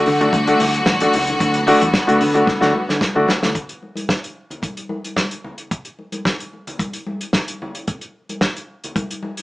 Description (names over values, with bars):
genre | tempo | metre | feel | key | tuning
disco | 111 BPM | 4/4 | straight | unclear | A4 = 440 Hz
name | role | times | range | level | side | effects
warm concert grand piano | accompaniment | 0.0-3.5 s | D3 to F#4 | -16 LUFS | left 1 dB | none
bright studio string section | sustained chords | 0.0-3.5 s | D3 to F#4 | -21 LUFS | equal | none
fingered electric bass | bass | 0.0-3.5 s | A1 to D3 | -22 LUFS | equal | none
warm soul drum kit | drums | 0.1-9.4 s | hi-hat, kick drum, snare drum | -21 LUFS | equal | none
congas | percussion | 0.1-9.4 s | none | -30 LUFS | left 1 dB | none
room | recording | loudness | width
light reverb | band playing live in one room, small speaker sound | -16 LUFS | side -18 dB against mid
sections
0.0-3.6 A section; 3.6-9.4 B section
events
drum fill 2.5-3.6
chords
0.0 D; 3.6 N.C.